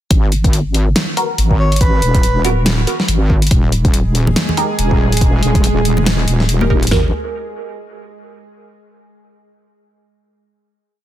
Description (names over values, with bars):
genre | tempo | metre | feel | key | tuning
deep dubstep | 141 BPM | 4/4 | swing 58% on 16ths, half-time | G# minor | A4 = 442 Hz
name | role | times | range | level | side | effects
wobble bass | bass | 0.1-7.1 s | D#1 to G#1 | -15 LUFS | equal | chorus
deep house drum kit | drums | 0.1-7.0 s | kick drum, snare drum, toms | -14 LUFS | equal | none
deep house drum kit | drums | 0.1-7.0 s | hi-hat, snare drum | -19 LUFS | equal | none
filtered dub chord stab | stabs | 1.2-7.1 s | B3 to A#4 | -22 LUFS | right 2 dB | phaser, lush chorus, dub echo
melodica | melody | 1.6-2.4 s | B4 to C#5 | -21 LUFS | right 1 dB | dub echo
bowed-like drone | sustained chords | 4.1-7.0 s | G#3 to G#4 | -23 LUFS | right 3 dB | built-in reverb
congas | percussion | 4.3-6.7 s | none | -22 LUFS | left 2 dB | dub echo
room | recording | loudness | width
digital ambience | dense, heavily limited modern master | -12 LUFS | side -12 dB against mid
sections
0.1-6.9 drop; 6.9-8.6 final chord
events
drop 0.1-6.9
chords
0.1 G#5; 3.5 N.C.; 6.9 G#m7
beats
| 0.11 0.53 0.96 1.38 | 1.81 2.23 2.66 3.09 | 3.51 3.94 4.36 4.79 | 5.21 5.64 6.07 6.49 | 6.92